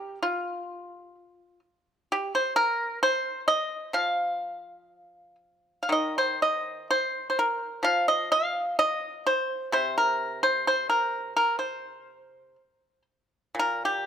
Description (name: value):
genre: chinese traditional, Chinese solo plucked strings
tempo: 63 BPM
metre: 2/4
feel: rubato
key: C yu mode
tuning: A4 = 442 Hz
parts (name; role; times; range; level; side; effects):
- pipa; solo; 0.0-14.1 s; Bb2 to F5; -24 LUFS; equal; none
room: light reverb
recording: close, detailed microphones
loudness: -24 LUFS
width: side -8 dB against mid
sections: 0.0-13.6 A section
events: none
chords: none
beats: | 0.21 1.16 | 2.08 3.01 | 3.94 4.90 | 5.90 6.89 | 7.84 8.78 | 9.73 10.67 | 11.60 12.56 | 13.57